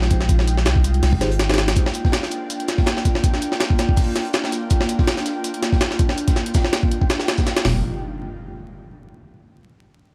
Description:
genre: drum and bass, jungle.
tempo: 163 BPM.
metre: 4/4.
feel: swing 54% on 16ths.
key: F dorian.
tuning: A4 = 438 Hz.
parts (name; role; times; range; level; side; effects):
airy breathy pad; sustained chords; 0.0-7.8 s; Ab3 to G5; -28 LUFS; equal; chorus.
soft dub sub bass; bass; 0.0-1.8, 7.7-7.8 s; F1 to C2; -22 LUFS; equal; tube saturation.
crunchy breakbeat drum kit; drums; 0.0-7.7 s; hi-hat, shaker, snare drum; -36 LUFS; equal; none.
jungle sampler-style drum kit; drums; 0.0-7.7 s; hi-hat, kick drum, snare drum, toms; -21 LUFS; equal; none.
mellow tine electric piano; stabs; 1.2-1.6 s; Eb4 to C5; -32 LUFS; equal; dub echo.
impact; sound effects; 7.7-9.1 s; none; -35 LUFS; equal; none.
room: light reverb, small room ambience.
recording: vinyl crackle.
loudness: -20 LUFS.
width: mono.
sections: 0.0-7.7 A section; 7.7-9.1 B section.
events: none.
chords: 0.0 Fm9; 1.8 Gm7; 7.7 Fm9.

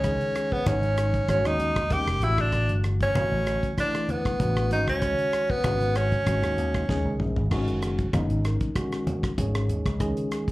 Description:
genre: electric jazz fusion.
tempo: 96 BPM.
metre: 4/4.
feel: straight.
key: G# minor.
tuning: A4 = 440 Hz.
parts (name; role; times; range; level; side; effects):
edgy tenor saxophone; melody; 0.0-7.2 s; B3 to G4; -26 LUFS; right 1 dB; slapback echo.
bright tine electric piano; accompaniment; 0.0-10.5 s; D3 to D#5; -30 LUFS; equal; medium stereo tremolo.
slap bass with an envelope filter; bass; 0.0-10.1 s; F#1 to D#2; -26 LUFS; equal; none.
damped 70s drum kit; drums; 0.0-10.5 s; crash cymbal, hi-hat, kick drum, rim click, snare drum, toms; -30 LUFS; equal; none.
congas; percussion; 0.0-10.1 s; none; -32 LUFS; left 1 dB; none.
room: little or no reverb.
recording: live gig heard through the venue's PA, club reverb.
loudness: -23 LUFS.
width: side -18 dB against mid.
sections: 0.0-7.5 A section; 7.5-10.5 B section.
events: drum fill 6.9-7.5.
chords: 0.0 G#9sus4; 2.2 A9sus4; 4.7 G#7sus4; 7.5 G#9sus4.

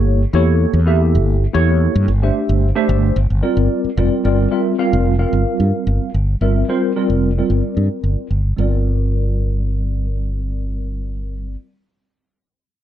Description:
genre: jazz.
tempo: 111 BPM.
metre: 4/4.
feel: straight.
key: G dorian.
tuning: A4 = 440 Hz.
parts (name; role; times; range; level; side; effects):
tine electric piano; accompaniment; 0.0-11.6 s; G3 to F5; -19 LUFS; equal; medium stereo tremolo, lush chorus.
mellow fretless electric bass; bass; 0.0-11.5 s; F1 to G2; -16 LUFS; equal; none.
room: light reverb.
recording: none.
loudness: -15 LUFS.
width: side -11 dB against mid.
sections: 0.0-4.2 A section; 4.2-8.6 B section; 8.6-12.8 C section.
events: none.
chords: 0.0 A7b9/G; 2.1 D9sus4/G; 3.2 Gm7.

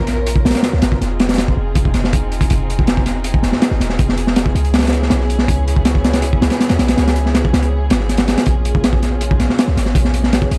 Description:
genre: drum and bass, jungle.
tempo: 161 BPM.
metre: 4/4.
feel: straight.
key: Bb minor.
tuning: A4 = 440 Hz.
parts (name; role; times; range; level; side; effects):
dark studio string section; sustained chords; 0.0-10.6 s; Bb3 to Bb4; -28 LUFS; equal; none.
warm 808-style bass; bass; 0.0-10.6 s; Eb1 to Fb2; -20 LUFS; equal; none.
crunchy breakbeat drum kit; drums; 0.1-10.6 s; hi-hat, kick drum, snare drum; -17 LUFS; equal; none.
room: little or no reverb.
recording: dry, gritty hardware recording, transformer saturation, vinyl crackle.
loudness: -16 LUFS.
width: mono.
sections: 0.0-10.6 A section.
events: none.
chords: 0.0 Bbm7; 1.0 Fm7; 4.7 Dbm7; 8.5 Bbm7.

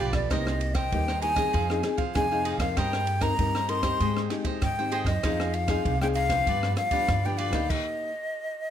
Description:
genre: samba and choro.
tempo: 97 BPM.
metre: 4/4.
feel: straight.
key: C minor.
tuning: A4 = 441 Hz.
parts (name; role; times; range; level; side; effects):
breathy jazz flute; melody; 0.0-8.7 s; D5 to C6; -28 LUFS; left 1 dB; none.
cavaquinho; accompaniment; 0.0-7.7 s; Eb4 to G5; -35 LUFS; right 6 dB; none.
nylon-string guitar; accompaniment; 0.0-8.1 s; G2 to Bb4; -31 LUFS; left 4 dB; none.
upright bass; bass; 0.0-7.7 s; B1 to Ab2; -30 LUFS; right 1 dB; none.
compact cocktail drum kit; drums; 0.1-7.8 s; crash cymbal, kick drum, ride cymbal, rim click; -31 LUFS; right 1 dB; none.
room: light reverb.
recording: none.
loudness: -24 LUFS.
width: side -10 dB against mid.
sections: 0.0-8.7 A section.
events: stop 7.7-8.7.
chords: 0.3 Cm7; 1.5 Fm7; 2.8 Cm7/G; 4.0 Abmaj7; 5.2 Fm7; 6.5 G7; 7.7 Bbsus4.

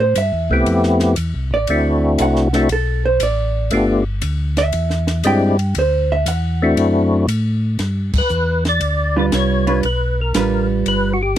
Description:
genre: soul jazz organ trio.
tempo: 118 BPM.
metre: 4/4.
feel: swing 68% on 8ths.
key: unclear.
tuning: A4 = 439 Hz.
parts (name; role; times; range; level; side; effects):
vintage hollow-body jazz guitar; accompaniment; 0.0-11.1 s; G3 to G5; -19 LUFS; right 4 dB; none.
mellow tonewheel organ; bass; 0.0-11.4 s; G1 to A2; -19 LUFS; equal; slow rotary speaker.
compact cocktail drum kit; drums; 0.2-11.4 s; crash cymbal, hi-hat, kick drum, ride cymbal, snare drum; -26 LUFS; equal; none.
percussive tonewheel organ; melody; 0.5-11.4 s; G#3 to D5; -16 LUFS; left 2 dB; slow rotary speaker, chorus vibrato.
room: little or no reverb.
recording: dry, close 1970s-style studio recording.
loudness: -15 LUFS.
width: side -11 dB against mid.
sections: 0.0-7.8 A section; 7.8-11.4 B section.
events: hollow-body jazz guitar solo 0.0-7.8; band accent 8.1.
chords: 0.0 Am7; 1.7 D7; 3.7 G7; 4.7 E7alt; 5.8 D7; 7.8 G7.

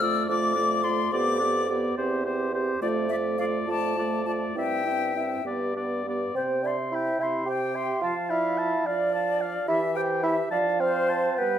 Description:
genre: quick classical-period movement for wind quintet.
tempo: 66-73 BPM (dotted quarters).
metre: 6/8.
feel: rubato.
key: C major.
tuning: A4 = 438 Hz.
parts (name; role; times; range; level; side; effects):
bright silver concert flute; melody; 0.0-11.6 s; B4 to E6; -29 LUFS; left 6 dB; none.
warm oboe; second line; 0.0-11.6 s; C5 to C6; -31 LUFS; left 2 dB; none.
mellow clarinet; accompaniment; 0.0-11.6 s; E4 to F5; -32 LUFS; right 6 dB; none.
warm French horn; accompaniment; 0.0-11.6 s; C3 to C4; -33 LUFS; equal; none.
mellow bassoon; bass; 0.0-11.6 s; E2 to G4; -28 LUFS; right 2 dB; none.
room: wet recital hall reverb, RT60 1.4 s.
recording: none.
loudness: -24 LUFS.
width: side -10 dB against mid.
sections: 0.0-6.3 A section; 6.3-11.6 B section.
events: none.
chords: 0.0 Dm/F; 1.1 G7/F; 2.0 C/E; 2.8 Dm/F; 4.6 C/G; 5.5 G; 6.3 C; 8.0 Dm/F; 9.7 C/E; 10.5 Dm/F.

